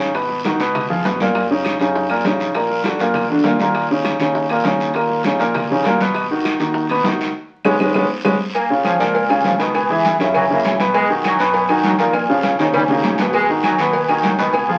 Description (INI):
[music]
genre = latin, salsa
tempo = 200 BPM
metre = 4/4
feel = straight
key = Eb minor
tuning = A4 = 441 Hz
[part]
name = warm concert grand piano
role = accompaniment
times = 0.0-14.8 s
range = Bb2 to Cb5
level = -20 LUFS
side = equal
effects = none
[part]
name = fingered electric bass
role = bass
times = 0.0-14.8 s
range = Ab1 to Gb2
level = -32 LUFS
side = equal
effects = none
[part]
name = bongos and cowbell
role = percussion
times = 0.0-14.7 s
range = none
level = -30 LUFS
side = equal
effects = none
[part]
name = congas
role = percussion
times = 0.0-14.8 s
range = none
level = -28 LUFS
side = equal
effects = none
[part]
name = guiro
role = percussion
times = 0.0-14.8 s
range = none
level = -32 LUFS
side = equal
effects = none
[part]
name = claves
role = percussion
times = 0.1-14.7 s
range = none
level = -34 LUFS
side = equal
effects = none
[part]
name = timbales and agogo bells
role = percussion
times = 0.1-14.7 s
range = none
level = -25 LUFS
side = equal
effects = none
[part]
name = bright trombone section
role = second line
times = 8.5-14.8 s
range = Eb3 to Bb3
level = -25 LUFS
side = equal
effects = none
[sound]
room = wet studio reverb, RT60 0.6 s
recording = very old 78 rpm record, vinyl crackle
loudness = -17 LUFS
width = mono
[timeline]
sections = 0.0-8.5 A section; 8.5-14.8 B section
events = drum fill 7.3-8.5, 12.6-13.3; band accent 7.3-8.5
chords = 0.1 Abm7; 0.7 Db6; 1.3 Gb6; 2.5 Bbaug; 3.7 Eb5; 6.1 Abm7; 7.3 Db5; 8.5 Db13; 9.7 Dbm7; 10.3 Gb7; 10.9 B; 12.1 Bbm; 12.7 Eb7(no3); 13.3 Abm7